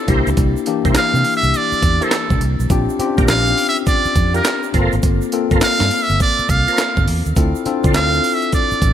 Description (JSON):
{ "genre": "R&B, new jack swing", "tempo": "103 BPM", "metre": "4/4", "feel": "swing 64% on 16ths", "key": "G dorian", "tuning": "A4 = 440 Hz", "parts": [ { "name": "trumpet with metal mute", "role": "melody", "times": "0.0-8.9 s", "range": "A4 to F5", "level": "-19 LUFS", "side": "right 2 dB", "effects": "none" }, { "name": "bell-like tine electric piano", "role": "accompaniment", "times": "0.0-8.9 s", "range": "E3 to A4", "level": "-21 LUFS", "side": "left 8 dB", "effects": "wide subtle chorus" }, { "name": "tonewheel organ", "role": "stabs", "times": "0.1-8.0 s", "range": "D4 to D5", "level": "-26 LUFS", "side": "right 2 dB", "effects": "chorus vibrato, fast rotary speaker" }, { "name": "vintage muted fingered electric bass", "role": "bass", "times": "0.1-8.9 s", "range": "G1 to D3", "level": "-18 LUFS", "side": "right 1 dB", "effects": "none" }, { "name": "breakbeat sampler-style drum kit", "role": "drums", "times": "0.1-8.9 s", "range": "handclaps, hi-hat, kick drum, snare drum, tambourine", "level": "-19 LUFS", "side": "right 1 dB", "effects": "gated reverb" }, { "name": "egg shaker", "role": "percussion", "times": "0.3-8.9 s", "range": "none", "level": "-37 LUFS", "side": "right 13 dB", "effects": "none" } ], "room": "light reverb, digital ambience", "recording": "bright 1980s-style digital production", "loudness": "-14 LUFS", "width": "side -10 dB against mid", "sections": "0.0-8.9 A section", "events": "none", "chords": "0.1 C7; 2.7 Bb6; 4.7 Gm11; 7.4 Dm7" }